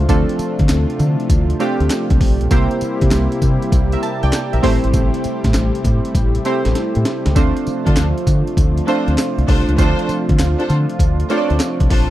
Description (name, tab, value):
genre	R&B, new jack swing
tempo	99 BPM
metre	4/4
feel	swing 67% on 16ths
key	D minor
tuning	A4 = 443 Hz
part	warm analog keys	accompaniment	0.0-12.1 s	A3 to A5	-21 LUFS	right 2 dB	chorus
part	brassy analog pad	sustained chords	0.0-12.1 s	C3 to G4	-24 LUFS	left 1 dB	chorus
part	deep dub fingered electric bass	bass	0.0-12.1 s	G#1 to D3	-17 LUFS	equal	none
part	breakbeat sampler-style drum kit	drums	0.1-12.1 s	handclaps, hi-hat, kick drum, snare drum, tambourine	-17 LUFS	equal	none
part	warm studio string section	stabs	7.9-12.1 s	D4 to C5	-24 LUFS	left 2 dB	none
room	little or no reverb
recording	dry, close 1970s-style studio recording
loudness	-14 LUFS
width	side -14 dB against mid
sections	0.0-12.1 A section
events	drum fill 6.8-7.4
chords	0.0 Dm7; 2.5 C7; 4.6 Am7; 7.4 Dm7